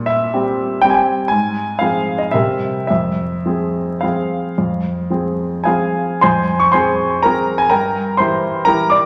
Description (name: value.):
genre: classical, piano waltz.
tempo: 103-130 BPM.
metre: 3/4.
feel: rubato.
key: F minor.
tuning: A4 = 440 Hz.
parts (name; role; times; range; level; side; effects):
warm baby grand piano; solo; 0.0-9.1 s; F2 to D6; -17 LUFS; equal; none.
room: wet recital hall reverb, RT60 1.5 s.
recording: vinyl crackle.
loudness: -17 LUFS.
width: mono.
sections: 0.0-6.2 A section; 6.2-9.1 B section.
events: none.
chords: 0.0 C7/Bb; 1.3 Fm/Ab; 2.3 C7; 2.9 Fm; 7.7 Edim/G.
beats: 0.34 0.84 | 1.31 1.81 2.34 | 2.90 3.46 4.03 | 4.58 5.11 5.67 | 6.23 6.73 7.24 | 7.72 8.19 8.68.